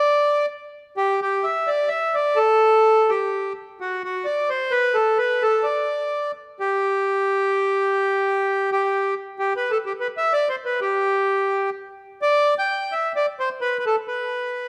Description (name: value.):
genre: alpine folk.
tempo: 128 BPM.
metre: 3/4.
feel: straight.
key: G major.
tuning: A4 = 440 Hz.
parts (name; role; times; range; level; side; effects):
accordion; solo; 0.0-14.7 s; F#4 to G5; -22 LUFS; equal; none.
room: wet recital hall reverb, RT60 1.9 s.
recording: none.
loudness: -22 LUFS.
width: mono.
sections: 1.0-12.2 A section; 12.2-14.7 B section.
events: none.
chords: none.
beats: 0.03 0.50 | 0.98 1.45 1.92 | 2.39 2.86 3.32 | 3.79 4.25 4.71 | 5.18 5.65 6.12 | 6.59 7.06 7.53 | 8.00 8.46 8.93 | 9.39 9.86 10.32 | 10.79 11.26 11.73 | 12.20 12.67 13.14 | 13.60 14.07 14.53.